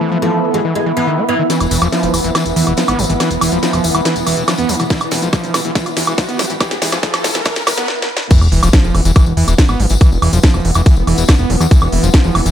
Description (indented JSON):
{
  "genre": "psychedelic trance",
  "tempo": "141 BPM",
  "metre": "4/4",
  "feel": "straight",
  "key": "unclear",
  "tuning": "A4 = 438 Hz",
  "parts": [
    { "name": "pulsing gated texture", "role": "sustained chords", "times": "0.0-12.5 s", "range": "E3 to B3", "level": "-23 LUFS", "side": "equal", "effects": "chorus, built-in reverb, sidechain pumping" },
    { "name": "overdriven acid bass", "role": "riff", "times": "0.0-12.5 s", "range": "D#3 to B3", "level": "-19 LUFS", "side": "equal", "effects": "distortion, auto-pan, sidechain pumping, dub echo" },
    { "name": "airy breathy pad", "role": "texture", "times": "0.0-7.9 s", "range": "B3 to B5", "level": "-23 LUFS", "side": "right 2 dB", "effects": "chorus, phaser, sidechain pumping" },
    { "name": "oud", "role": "melody", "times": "0.2-1.4 s", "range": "E3 to A3", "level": "-19 LUFS", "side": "equal", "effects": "phaser, sidechain pumping, ping-pong delay" },
    { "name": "techno drum kit", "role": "drums", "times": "1.5-12.5 s", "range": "crash cymbal, hi-hat, snare drum, woodblock", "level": "-18 LUFS", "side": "right 1 dB", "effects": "high-pass filter on snare, high-pass filter on hats, high-pass filter on perc, high-pass filter on cymbals, high-pass filter on room" },
    { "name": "tambourine", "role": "percussion", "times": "1.5-12.5 s", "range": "none", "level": "-26 LUFS", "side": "left 6 dB", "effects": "none" },
    { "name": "riser and sub drop", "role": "sound effects", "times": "4.3-10.0 s", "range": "none", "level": "-22 LUFS", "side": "equal", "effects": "none" },
    { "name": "fat analog bass", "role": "bass", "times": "1.6-12.5 s", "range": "E1 to E2", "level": "-17 LUFS", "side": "equal", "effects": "none" },
    { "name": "electronic kick drum", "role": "drums", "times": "4.9-12.2 s", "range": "none", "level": "-10 LUFS", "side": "equal", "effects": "none" }
  ],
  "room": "light reverb",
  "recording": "high-pass filter",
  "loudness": "-11 LUFS",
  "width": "side -10 dB against mid",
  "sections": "0.0-1.5 A section; 1.5-8.3 B section; 8.3-12.5 C section",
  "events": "build-up 1.5-8.3; drum fill 1.5-7.9, 7.9-8.3; filter sweep on acid bass 1.5-8.3; filter sweep 1.5-8.3; riser 4.3-7.9; stop 7.9-8.3; drop 8.3-12.5; impact 8.3-10.0",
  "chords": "0.0 E5",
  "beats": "0.22 0.65 1.07 | 1.50 1.93 2.35 2.78 | 3.20 3.63 4.05 4.48 | 4.90 5.33 5.75 6.18 | 6.61 7.03 7.46 7.88 | 8.31 8.73 9.16 9.58 | 10.01 10.44 10.86 11.29 | 11.71 12.14"
}